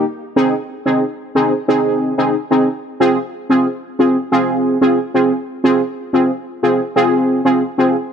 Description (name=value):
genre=dancehall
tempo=91 BPM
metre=4/4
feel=straight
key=F minor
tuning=A4 = 440 Hz
part: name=synth brass stab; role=solo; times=0.0-8.0 s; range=C4 to Ab4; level=-14 LUFS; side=equal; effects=chorus
room=light reverb, digital ambience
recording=none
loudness=-14 LUFS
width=side -7 dB against mid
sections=0.0-8.1 A section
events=none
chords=0.4 Ab; 3.0 Fm